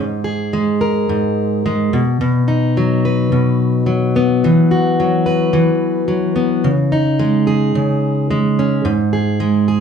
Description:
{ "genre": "pop", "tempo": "108 BPM", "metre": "4/4", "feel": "straight", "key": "G# minor", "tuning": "A4 = 440 Hz", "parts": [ { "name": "fingerpicked plugged-in steel-string acoustic guitar", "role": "solo", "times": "0.0-9.8 s", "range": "G#2 to B4", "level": "-13 LUFS", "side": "equal", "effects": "none" } ], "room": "moderate studio reverb, RT60 0.6 s", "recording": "studio ambience", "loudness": "-13 LUFS", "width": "side -7 dB against mid", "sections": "0.0-9.8 A section", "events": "none", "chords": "0.0 G#sus2; 1.9 B; 4.4 Esus2; 6.6 C#sus2; 8.8 G#5", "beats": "0.54 1.09 1.65 | 2.20 2.76 3.31 3.87 | 4.42 4.97 5.53 6.08 | 6.63 7.19 7.74 8.29 | 8.85 9.40" }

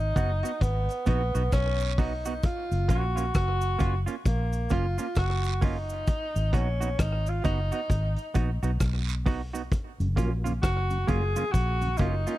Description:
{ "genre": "roots reggae", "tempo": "66 BPM", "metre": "4/4", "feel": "swing 61% on 16ths", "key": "F# major", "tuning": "A4 = 441 Hz", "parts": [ { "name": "warm tenor saxophone", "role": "melody", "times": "0.0-12.4 s", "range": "A#3 to G#4", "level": "-31 LUFS", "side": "equal", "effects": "tape echo" }, { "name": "vintage muted fingered electric bass", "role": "bass", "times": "0.0-12.2 s", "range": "F#1 to B1", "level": "-27 LUFS", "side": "equal", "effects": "none" }, { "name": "semi-hollow electric guitar", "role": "accompaniment", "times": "0.2-12.3 s", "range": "A#3 to F#4", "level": "-34 LUFS", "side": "right 6 dB", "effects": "tape echo" }, { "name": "vintage drum kit", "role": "drums", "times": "0.2-12.4 s", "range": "hi-hat, kick drum, rim click", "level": "-27 LUFS", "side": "equal", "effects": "none" }, { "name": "cabasa and guiro", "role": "percussion", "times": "0.2-12.4 s", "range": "none", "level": "-42 LUFS", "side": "right 9 dB", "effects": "none" }, { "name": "mellow tonewheel organ", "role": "accompaniment", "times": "10.0-12.3 s", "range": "F#2 to E#4", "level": "-34 LUFS", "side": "left 1 dB", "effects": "chorus vibrato, slow rotary speaker, slapback echo" } ], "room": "little or no reverb", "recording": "dry, close 1970s-style studio recording", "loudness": "-24 LUFS", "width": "side -16 dB against mid", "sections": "0.0-12.4 A section", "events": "none", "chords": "0.0 G#m7; 2.4 F#maj7; 6.1 G#m7; 9.7 F#maj7", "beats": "0.61 1.52 | 2.43 3.34 4.25 5.17 | 6.08 6.99 7.90 8.81 | 9.72 10.63 11.54" }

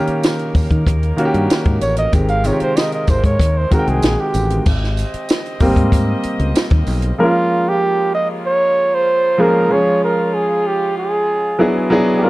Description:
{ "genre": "lush 1970s-style soul", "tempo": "95 BPM", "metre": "4/4", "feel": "straight", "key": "unclear", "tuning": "A4 = 441 Hz", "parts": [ { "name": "warm grand piano", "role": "accompaniment", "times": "0.0-12.3 s", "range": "C3 to G5", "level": "-18 LUFS", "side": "equal", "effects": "none" }, { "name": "muted French horn section", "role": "sustained chords", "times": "0.0-12.3 s", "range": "C3 to Eb5", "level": "-29 LUFS", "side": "left 1 dB", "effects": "none" }, { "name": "fingered electric bass", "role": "bass", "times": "0.1-7.1 s", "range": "Ab1 to Eb3", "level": "-18 LUFS", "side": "equal", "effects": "none" }, { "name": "compact cocktail drum kit", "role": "drums", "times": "0.1-7.2 s", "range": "crash cymbal, hi-hat, kick drum, snare drum", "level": "-16 LUFS", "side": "equal", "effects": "none" }, { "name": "tambourine", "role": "percussion", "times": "0.2-7.0 s", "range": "none", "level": "-36 LUFS", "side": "right 6 dB", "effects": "none" }, { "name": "mellow flugelhorn", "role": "melody", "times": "1.8-12.3 s", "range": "F4 to F5", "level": "-17 LUFS", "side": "right 2 dB", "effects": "none" } ], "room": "small room reverb", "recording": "dark, warm production", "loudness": "-14 LUFS", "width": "side -19 dB against mid", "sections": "0.0-4.7 A section; 4.7-7.2 B section; 7.2-12.3 C section", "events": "flugelhorn solo 0.0-4.7; grand piano solo 4.7-7.2", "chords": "0.0 Eb7; 2.1 Abmaj7; 7.2 Bbm7; 9.7 Db; 11.6 E9", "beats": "0.23 0.87 1.50 | 2.13 2.76 3.40 4.03 | 4.66 5.29 5.92 6.55 | 7.18 7.81 8.44 9.07 | 9.71 10.34 10.97 11.60 | 12.23" }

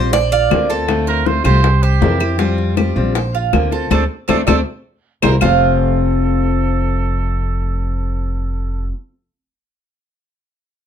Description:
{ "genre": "latin, Cuban son and guajira", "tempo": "159 BPM", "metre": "4/4", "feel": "straight", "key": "F major", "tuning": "A4 = 442 Hz", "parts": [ { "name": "Cuban tres", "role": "melody", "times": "0.0-1.1 s", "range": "A4 to D5", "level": "-17 LUFS", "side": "right 6 dB", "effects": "none" }, { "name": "fingerpicked steel-string acoustic guitar", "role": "accompaniment", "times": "0.0-9.0 s", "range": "F2 to F4", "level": "-20 LUFS", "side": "left 4 dB", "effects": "none" }, { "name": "Cuban tres", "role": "arpeggios", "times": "0.0-8.9 s", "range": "C4 to F5", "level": "-21 LUFS", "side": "right 8 dB", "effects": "none" }, { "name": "upright bass", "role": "bass", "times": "0.0-8.9 s", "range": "F1 to F2", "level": "-17 LUFS", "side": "equal", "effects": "none" }, { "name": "bongos", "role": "percussion", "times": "0.1-5.5 s", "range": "none", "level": "-20 LUFS", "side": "left 7 dB", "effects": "none" }, { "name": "claves", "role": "percussion", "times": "0.5-5.5 s", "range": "none", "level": "-24 LUFS", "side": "left 7 dB", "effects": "none" }, { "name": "clear trumpet", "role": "second line", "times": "1.1-8.9 s", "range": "G4 to C5", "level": "-23 LUFS", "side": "right 8 dB", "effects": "none" } ], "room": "light reverb", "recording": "dark, warm production", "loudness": "-14 LUFS", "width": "side -8 dB against mid", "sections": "0.0-5.4 A section; 5.4-8.4 B section", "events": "band accent 3.9-5.4", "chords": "0.1 Bbadd9; 0.9 Dm7; 1.6 C7; 2.4 Fsus2; 3.2 Bbadd9; 3.9 D5; 4.7 C7; 5.4 F", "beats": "0.14 0.51 | 0.89 1.27 1.65 2.02 | 2.40 2.78 3.16 3.53 | 3.91 4.29 4.67 5.04 | 5.42 5.80 6.17 6.55 | 6.93 7.30 7.68 8.06" }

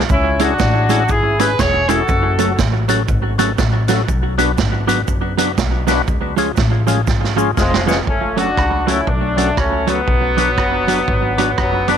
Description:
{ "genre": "ska", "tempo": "120 BPM", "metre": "4/4", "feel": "swing 60% on 8ths", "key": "F# minor", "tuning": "A4 = 441 Hz", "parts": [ { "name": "percussive tonewheel organ", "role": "stabs", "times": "0.0-12.0 s", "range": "C#4 to B4", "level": "-22 LUFS", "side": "left 11 dB", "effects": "slow rotary speaker, tape echo" }, { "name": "upright bass", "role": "bass", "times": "0.0-12.0 s", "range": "E1 to C#2", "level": "-20 LUFS", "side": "left 1 dB", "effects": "none" }, { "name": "vintage drum kit", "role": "drums", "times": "0.0-12.0 s", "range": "hi-hat, kick drum, rim click, snare drum", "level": "-20 LUFS", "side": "right 2 dB", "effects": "none" }, { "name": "clear horn section", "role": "melody", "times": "0.1-2.6, 7.6-12.0 s", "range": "E#3 to C#5", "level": "-17 LUFS", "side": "left 1 dB", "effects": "none" }, { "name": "cabasa", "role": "percussion", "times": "0.1-8.0 s", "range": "none", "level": "-36 LUFS", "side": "right 13 dB", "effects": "none" }, { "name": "mellow electric guitar", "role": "accompaniment", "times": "0.4-12.0 s", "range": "E#3 to G#4", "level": "-22 LUFS", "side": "right 10 dB", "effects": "tape echo" } ], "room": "studio reverb", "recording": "1960s-style stereo with parts hard left and right", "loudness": "-14 LUFS", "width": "side -8 dB against mid", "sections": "0.0-8.1 A section; 8.1-12.0 B section", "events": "drum fill 7.1-8.1", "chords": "0.1 C#m; 2.1 F#m; 4.1 Bm; 6.1 C#; 8.1 F#m; 10.1 Bm", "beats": "| 0.10 0.60 1.10 1.59 | 2.09 2.59 3.09 3.59 | 4.08 4.58 5.08 5.58 | 6.08 6.58 7.07 7.57 | 8.07 8.57 9.07 9.57 | 10.08 10.58 11.08 11.58" }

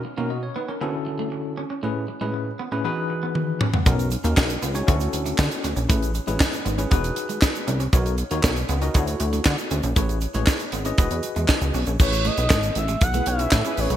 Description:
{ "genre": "early-eighties boogie funk", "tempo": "118 BPM", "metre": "4/4", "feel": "straight", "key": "unclear", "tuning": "A4 = 441 Hz", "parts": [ { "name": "clean electric guitar", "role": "riff", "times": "0.0-14.0 s", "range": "G#3 to C#4", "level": "-32 LUFS", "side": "right 4 dB", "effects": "lush chorus" }, { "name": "bell-like tine electric piano", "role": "accompaniment", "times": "0.2-13.7 s", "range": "A2 to D#5", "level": "-28 LUFS", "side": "left 2 dB", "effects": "medium stereo tremolo" }, { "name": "tight funk drum kit", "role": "drums", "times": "3.4-14.0 s", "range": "crash cymbal, handclaps, hi-hat, kick drum, snare drum, toms", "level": "-21 LUFS", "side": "equal", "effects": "gated reverb" }, { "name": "chorused synth bass", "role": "bass", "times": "3.9-14.0 s", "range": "E1 to D3", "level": "-24 LUFS", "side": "equal", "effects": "none" }, { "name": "egg shaker", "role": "percussion", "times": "3.9-14.0 s", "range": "none", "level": "-38 LUFS", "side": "right 6 dB", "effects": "none" }, { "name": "expressive portamento lead", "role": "melody", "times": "12.0-14.0 s", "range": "C#5 to F#5", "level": "-26 LUFS", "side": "equal", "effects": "chorus" }, { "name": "mellow synth brass", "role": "second line", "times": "13.1-14.0 s", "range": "E4 to B4", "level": "-30 LUFS", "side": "right 2 dB", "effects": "chorus" } ], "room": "light reverb, small room ambience", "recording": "bright 1980s-style digital production", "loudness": "-20 LUFS", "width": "side -11 dB against mid", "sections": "0.0-12.0 A section; 12.0-14.0 B section", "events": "drum fill 3.4-3.9", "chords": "0.0 Bmaj9; 0.8 Dmaj9; 1.8 Amaj9; 2.8 Emaj9; 3.9 Bmaj9; 4.9 Dmaj9; 5.9 Amaj9; 6.9 Emaj9; 7.9 Bmaj9; 8.9 Dmaj9; 10.0 Amaj9; 11.0 Emaj9; 12.0 Amaj9", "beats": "0.30 0.81 1.32 | 1.83 2.34 2.85 3.35 | 3.86 4.37 4.88 5.39 | 5.90 6.40 6.91 7.42 | 7.93 8.44 8.95 9.46 | 9.96 10.47 10.98 11.49 | 12.00 12.51 13.02 13.52" }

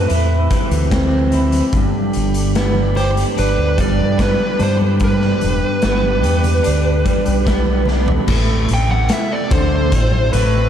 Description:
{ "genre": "psychedelic rock", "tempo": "73 BPM", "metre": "4/4", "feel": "straight", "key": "A minor", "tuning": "A4 = 442 Hz", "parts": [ { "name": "fuzz lead guitar", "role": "melody", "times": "0.0-10.7 s", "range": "B4 to G5", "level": "-22 LUFS", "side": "right 1 dB", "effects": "distortion, analog delay" }, { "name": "tonewheel organ", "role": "sustained chords", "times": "0.0-10.7 s", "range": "C3 to B5", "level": "-27 LUFS", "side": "right 4 dB", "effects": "slow rotary speaker, overdrive" }, { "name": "electric guitar at the edge of break-up", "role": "riff", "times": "0.0-10.7 s", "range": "G2 to A4", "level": "-19 LUFS", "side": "equal", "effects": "tremolo, double-tracked left and right" }, { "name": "growling fingered electric bass", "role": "bass", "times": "0.0-10.7 s", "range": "E1 to G2", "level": "-18 LUFS", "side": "equal", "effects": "overdrive" }, { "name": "raw garage drum kit", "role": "drums", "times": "0.1-10.5 s", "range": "crash cymbal, hi-hat, kick drum, snare drum, toms", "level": "-20 LUFS", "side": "equal", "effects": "none" }, { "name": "congas", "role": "percussion", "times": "0.1-10.5 s", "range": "none", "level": "-30 LUFS", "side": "left 3 dB", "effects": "none" } ], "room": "moderate lush hall reverb, RT60 2.8 s", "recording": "dreamy mix soaked in reverb", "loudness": "-14 LUFS", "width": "side -9 dB against mid", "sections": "0.0-8.3 A section; 8.3-10.7 B section", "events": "drum fill 7.9-8.3; lead electric guitar solo 8.3-10.7", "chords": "0.0 Am; 1.7 G; 8.3 Am", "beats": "0.10 0.92 | 1.74 2.56 3.38 4.20 | 5.01 5.83 6.65 7.47 | 8.29 9.11 9.93" }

